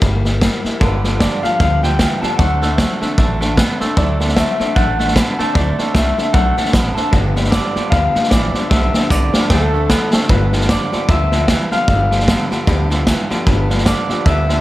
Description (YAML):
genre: rockabilly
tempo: 152 BPM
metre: 4/4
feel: swing 59% on 8ths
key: G mixolydian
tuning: A4 = 440 Hz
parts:
  - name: picked steel-string acoustic guitar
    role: accompaniment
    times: 0.0-14.6 s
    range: G2 to A4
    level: -24 LUFS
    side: left 5 dB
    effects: none
  - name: upright bass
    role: bass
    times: 0.0-14.6 s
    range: G1 to D2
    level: -18 LUFS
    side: equal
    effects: none
  - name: vintage drum kit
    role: drums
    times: 0.0-14.5 s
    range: hi-hat, kick drum, snare drum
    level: -16 LUFS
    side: equal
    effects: none
  - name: electric guitar through a small old amp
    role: melody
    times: 0.8-14.6 s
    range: A4 to A5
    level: -20 LUFS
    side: left 1 dB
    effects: analog delay
  - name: twangy electric guitar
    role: riff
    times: 0.8-14.6 s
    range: G2 to B3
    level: -23 LUFS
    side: right 3 dB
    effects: vibrato effect
room: small room reverb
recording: none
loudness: -13 LUFS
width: side -16 dB against mid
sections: 0.0-10.3 A section; 10.3-14.6 A section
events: drum fill 8.7-10.3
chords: 0.0 C7; 0.8 G7; 2.4 D7; 7.1 G7; 9.5 D7; 10.3 G7